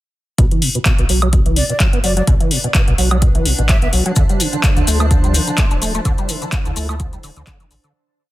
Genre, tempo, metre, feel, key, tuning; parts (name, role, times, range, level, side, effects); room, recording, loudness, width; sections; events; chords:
acid house; 127 BPM; 4/4; swing 55% on 16ths; A4 = 440 Hz
deep acid bass; riff; 0.4-7.9 s; B2 to D4; -21 LUFS; equal; overdrive, analog chorus, tape echo
warm sub bass; bass; 0.4-7.8 s; D1 to D2; -18 LUFS; equal; tube saturation, sidechain pumping
electro analog drum machine; drums; 0.4-7.9 s; handclaps, hi-hat, woodblock; -20 LUFS; left 1 dB
electronic kick drum; drums; 0.4-7.6 s; -15 LUFS; equal
granular cloud pad; texture; 2.6-7.9 s; D4 to A5; -29 LUFS; right 2 dB; built-in reverb, sidechain pumping
breathy hollow jazz flute; melody; 1.6-3.9 s; D5 to E5; -26 LUFS; right 1 dB; tape echo
warm analog pad; sustained chords; 4.2-7.9 s; F3 to C5; -27 LUFS; equal; chorus, sidechain pumping
maracas; percussion; 4.2-7.9 s; -25 LUFS; left 4 dB
little or no reverb; dense, heavily limited modern master; -13 LUFS; side -16 dB against mid
0.4-7.9 groove
fade-in on ambient pad 0.4-7.9; fade-out 5.4-7.9
0.4 Bm7; 4.2 Dm7